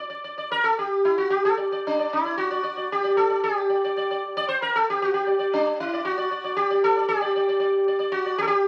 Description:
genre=indian classical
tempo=114 BPM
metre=7/4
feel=straight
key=D major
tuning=A4 = 440 Hz
part: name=sitar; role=solo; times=0.0-8.7 s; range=D4 to D5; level=-24 LUFS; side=equal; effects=none
room=wet studio reverb, RT60 0.6 s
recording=very old 78 rpm record, vinyl crackle, nothing above 10.6 kHz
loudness=-24 LUFS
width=mono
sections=0.0-8.7 A section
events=speeding up 0.0-8.7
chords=none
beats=0.23 0.77 1.31 1.84 2.37 2.90 | 3.43 3.96 4.48 5.00 5.53 6.05 6.57 | 7.09 7.60 8.12 8.63

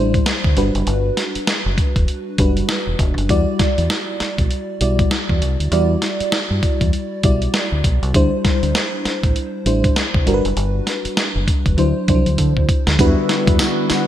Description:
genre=R&B, new jack swing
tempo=99 BPM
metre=4/4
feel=swing 60% on 16ths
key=G major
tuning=A4 = 439 Hz
part: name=FM electric piano with soft pad layer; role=accompaniment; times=0.0-14.1 s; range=F3 to D5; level=-20 LUFS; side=equal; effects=chorus, tremolo
part: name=deep dub fingered electric bass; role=bass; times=0.0-13.9 s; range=E1 to D3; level=-19 LUFS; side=equal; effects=none
part: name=dusty soul sampler-style drum kit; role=drums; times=0.1-14.1 s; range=hi-hat, kick drum, snare drum, tambourine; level=-18 LUFS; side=equal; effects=gated reverb
part: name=chorused pulse-width pad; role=sustained chords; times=13.0-14.1 s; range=D3 to F#4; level=-20 LUFS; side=left 1 dB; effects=none
room=light reverb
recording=bright 1980s-style digital production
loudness=-15 LUFS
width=side -12 dB against mid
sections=0.0-13.0 A section; 13.0-14.1 B section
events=drum fill 12.4-13.0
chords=0.0 D9sus4; 0.6 Gmaj7; 3.3 Em9; 8.1 D9sus4; 10.3 Gmaj7; 11.8 D9; 13.0 Em9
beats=0.26 | 0.87 1.48 2.08 2.69 | 3.29 3.90 4.50 5.11 | 5.72 6.32 6.93 7.54 | 8.14 8.75 9.35 9.96 | 10.57 11.17 11.78 12.38 | 12.99 13.60

